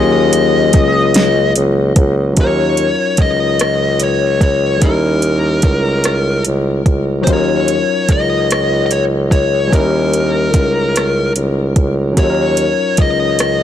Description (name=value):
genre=slow six-eight R&B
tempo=49 BPM (dotted quarters)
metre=6/8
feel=straight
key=Eb minor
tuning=A4 = 438 Hz
part: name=fuzz lead guitar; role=melody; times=0.0-13.6 s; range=Bb4 to Eb5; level=-17 LUFS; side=left 3 dB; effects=distortion
part: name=barky tine electric piano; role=accompaniment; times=0.0-13.6 s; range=Gb3 to Bb4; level=-20 LUFS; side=moving between left 9 dB and right 1 dB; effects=auto-pan
part: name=warm tuba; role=bass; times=0.0-13.6 s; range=Db2 to Eb2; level=-15 LUFS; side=right 1 dB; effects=transformer saturation
part: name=smooth R&B drum kit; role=drums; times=0.3-13.6 s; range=hi-hat, kick drum, rim click, snare drum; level=-14 LUFS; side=right 1 dB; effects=overdrive
room=digital ambience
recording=blown-out, overdriven recording, overdrive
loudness=-11 LUFS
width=side -10 dB against mid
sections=0.0-2.4 A section; 2.4-13.6 B section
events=none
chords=0.0 Ebm11; 2.4 Ebm9; 4.8 Eb7b9; 7.3 Ebm9; 9.7 Eb7b9; 12.2 Ebm9